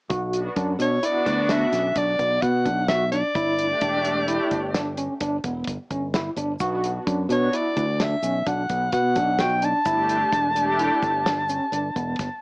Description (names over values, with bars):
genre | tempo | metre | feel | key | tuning
progressive instrumental, band music in an uneven meter | 129 BPM | 7/4 | straight | B minor | A4 = 438 Hz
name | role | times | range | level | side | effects
overdriven tine electric piano | arpeggios | 0.1-12.3 s | B3 to F#4 | -27 LUFS | right 1 dB | fast tremolo, cassette tape
modern bright fingered electric bass | bass | 0.1-12.3 s | E1 to B2 | -27 LUFS | equal | none
damped 70s drum kit | drums | 0.1-12.3 s | hi-hat, kick drum, snare drum | -29 LUFS | equal | cassette tape
lush unison pad | accompaniment | 0.3-10.9 s | A3 to G4 | -29 LUFS | equal | chorus, phaser, cassette tape
breathy soprano saxophone | melody | 0.8-12.4 s | C#5 to A5 | -23 LUFS | equal | cassette tape
egg shaker | percussion | 6.6-11.8 s | none | -46 LUFS | left 1 dB | none
room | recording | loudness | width
moderate studio reverb, RT60 0.6 s | home recording on cassette, small speaker sound | -20 LUFS | side -28 dB against mid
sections
0.1-12.4 A section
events
none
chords
0.1 Bm; 3.4 Gsus2; 6.6 Bm; 9.9 Gsus2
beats
| 0.10 0.56 1.03 1.49 1.96 2.42 2.89 | 3.35 3.82 4.28 4.75 5.21 5.67 6.14 | 6.60 7.07 7.53 8.00 8.46 8.93 9.39 | 9.86 10.32 10.79 11.26 11.72 12.19